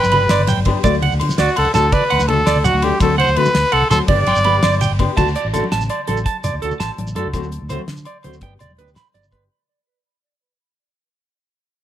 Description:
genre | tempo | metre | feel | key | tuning
highlife guitar band | 111 BPM (dotted quarters) | 12/8 | straight | D major | A4 = 440 Hz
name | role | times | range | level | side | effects
clear trumpet | melody | 0.0-4.9 s | F#4 to D5 | -17 LUFS | equal | none
electric guitar at the edge of break-up | arpeggios | 0.0-9.4 s | A4 to C6 | -21 LUFS | right 8 dB | tape echo
fingered electric bass | bass | 0.0-9.5 s | E1 to D3 | -21 LUFS | equal | none
congas | percussion | 0.0-9.3 s | none | -25 LUFS | left 2 dB | none
shekere | percussion | 0.0-9.3 s | none | -24 LUFS | right 1 dB | none
nylon-string guitar | accompaniment | 0.1-9.4 s | F#3 to G4 | -24 LUFS | left 7 dB | none
damped 70s drum kit | drums | 0.1-9.4 s | crash cymbal, hi-hat, kick drum, ride cymbal, snare drum | -23 LUFS | equal | none
agogo bells | percussion | 0.3-9.5 s | none | -27 LUFS | left 7 dB | none
room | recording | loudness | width
light reverb, studio ambience | none | -14 LUFS | side -11 dB against mid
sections
0.0-5.2 A section; 5.2-9.5 B section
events
drum fill 4.3-5.2; fade-out 5.2-9.5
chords
0.0 G; 0.8 D; 3.0 D7; 4.1 G; 5.2 D; 7.3 D7; 8.4 G

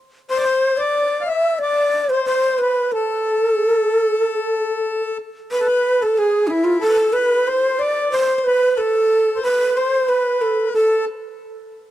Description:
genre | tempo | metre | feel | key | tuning
Arabic maqam ensemble | 92 BPM | 4/4 | straight | A maqam nahawand | A4 = 440 Hz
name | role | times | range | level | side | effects
breathy mellow shakuhachi | melody | 0.3-11.0 s | D4 to E5 | -17 LUFS | equal | none
accordion | second line | 0.3-11.1 s | E4 to F5 | -23 LUFS | left 2 dB | none
room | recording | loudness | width
moderate plate reverb, RT60 3.3 s | dark, warm production | -16 LUFS | side -13 dB against mid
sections
0.0-10.7 A section; 10.7-11.9 B section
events
none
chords
none

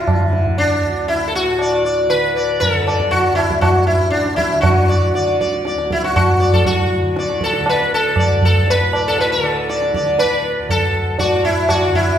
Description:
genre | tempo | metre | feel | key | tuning
indian classical, Hindustani | 119 BPM | 4/4 | straight | D raga bhupali | A4 = 440 Hz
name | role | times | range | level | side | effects
sitar | melody | 0.0-12.2 s | D4 to D5 | -16 LUFS | left 1 dB | none
tanpura | drone | 0.0-12.2 s | D2 to D3 | -26 LUFS | equal | none
tabla | percussion | 0.1-12.1 s | none | -18 LUFS | right 1 dB | none
room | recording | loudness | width
wet recital hall reverb, RT60 1.6 s | recorded in a church or concert hall | -14 LUFS | side -9 dB against mid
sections
0.0-12.2 A section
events
none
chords
none

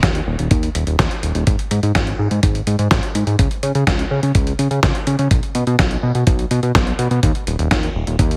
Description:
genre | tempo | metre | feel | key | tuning
italo disco | 125 BPM | 4/4 | straight | unclear | A4 = 440 Hz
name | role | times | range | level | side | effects
fat analog bass | bass | 0.0-8.4 s | Eb1 to Db3 | -20 LUFS | equal | none
dusty soul sampler-style drum kit | drums | 0.0-8.4 s | hi-hat, snare drum | -24 LUFS | equal | small room reverb
electronic kick drum | drums | 0.0-8.3 s | none | -21 LUFS | equal | small room reverb
room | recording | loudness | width
light reverb | heavily compressed radio sound, multiband compression | -18 LUFS | mono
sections
0.0-8.4 A section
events
none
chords
none

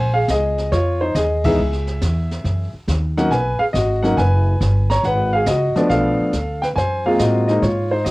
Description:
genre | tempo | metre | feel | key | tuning
jazz piano trio | 139 BPM | 4/4 | swing 67% on 8ths | unclear | A4 = 441 Hz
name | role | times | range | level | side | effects
warm concert grand piano | melody | 0.0-8.1 s | E3 to A#5 | -18 LUFS | equal | cassette tape
upright bass | bass | 0.0-8.1 s | F#1 to A2 | -20 LUFS | equal | none
jazz brush drum kit | drums | 0.3-8.1 s | brushed snare drum, crash cymbal, hi-hat, kick drum, snare drum | -29 LUFS | equal | cassette tape
room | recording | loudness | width
light reverb | home recording on cassette | -16 LUFS | side -20 dB against mid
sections
0.0-8.1 A section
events
band accent 1.4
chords
0.0 Bbm7; 1.6 Dbm; 2.4 Gb69; 3.3 Bmaj7; 5.0 Abm7; 5.9 Bm7b5; 6.8 Gbmaj9#11

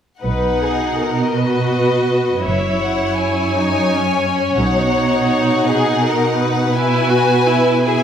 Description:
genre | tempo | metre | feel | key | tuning
classical, slow romantic movement for string orchestra | 55 BPM (dotted quarters) | 6/8 | uneven beats, rubato | B major | A4 = 440 Hz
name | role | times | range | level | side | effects
rich chamber violin section | melody | 0.2-8.0 s | D#5 to G#5 | -23 LUFS | left 6 dB | none
dark studio violin section | second line | 0.2-8.0 s | G#4 to C#5 | -19 LUFS | left 3 dB | none
rich chamber viola section | accompaniment | 0.2-8.0 s | C#4 to F#4 | -20 LUFS | right 2 dB | none
rich chamber double bass section | bass | 0.2-5.3 s | F#1 to B1 | -24 LUFS | right 1 dB | none
warm chamber cello section | bass | 0.2-8.0 s | F#2 to B2 | -20 LUFS | right 3 dB | none
room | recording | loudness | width
wet scoring stage reverb, RT60 1.5 s | none | -14 LUFS | side -8 dB against mid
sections
0.2-8.0 A section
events
none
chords
0.2 B; 2.4 F#sus2; 4.6 B; 6.7 E/B

